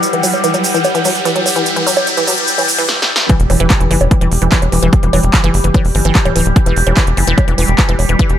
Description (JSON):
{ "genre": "psychedelic trance", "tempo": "147 BPM", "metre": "4/4", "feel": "straight", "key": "E minor", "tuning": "A4 = 441 Hz", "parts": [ { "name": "overtone-sweeping drone", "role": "sustained chords", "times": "0.0-8.4 s", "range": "G3 to G4", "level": "-20 LUFS", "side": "left 2 dB", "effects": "chorus, built-in reverb, phaser, sidechain pumping" }, { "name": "big-room dance drum kit", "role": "drums", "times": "0.0-8.4 s", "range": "bongos, handclaps, hi-hat, snare drum", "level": "-18 LUFS", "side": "right 2 dB", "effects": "none" }, { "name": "tube shaker", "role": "percussion", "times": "0.0-2.9 s", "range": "none", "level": "-21 LUFS", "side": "right 3 dB", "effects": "none" }, { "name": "riser and impact", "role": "sound effects", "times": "0.0-4.9 s", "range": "none", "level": "-20 LUFS", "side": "equal", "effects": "none" }, { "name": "ethereal airy pad", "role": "texture", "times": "0.0-2.9 s", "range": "E4 to E6", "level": "-23 LUFS", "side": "left 1 dB", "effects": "ensemble chorus, built-in reverb, sidechain pumping" }, { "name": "woody wave-folded pluck", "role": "riff", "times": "0.1-8.2 s", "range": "E3 to F#3", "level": "-18 LUFS", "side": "moving between left 3 dB and right 3 dB", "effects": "chorus, auto-pan, sidechain pumping, dub echo" }, { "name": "electronic kick drum", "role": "drums", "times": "3.3-8.3 s", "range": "none", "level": "-12 LUFS", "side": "equal", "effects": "overdrive" }, { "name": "tight sequencer bass", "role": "bass", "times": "3.4-8.4 s", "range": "D1 to G1", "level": "-14 LUFS", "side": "equal", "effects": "tube saturation" } ], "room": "light reverb, digital ambience", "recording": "high-pass filter", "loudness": "-10 LUFS", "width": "side -11 dB against mid", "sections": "0.0-3.3 A section; 3.3-8.4 B section", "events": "build-up 0.0-3.3; riser 0.0-2.9; filter sweep on synth arpeggio sound 0.0-3.3; filter sweep 0.0-3.3; drum fill 2.9-3.3; drop 3.3-8.4; impact 3.3-4.9", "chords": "0.0 E5" }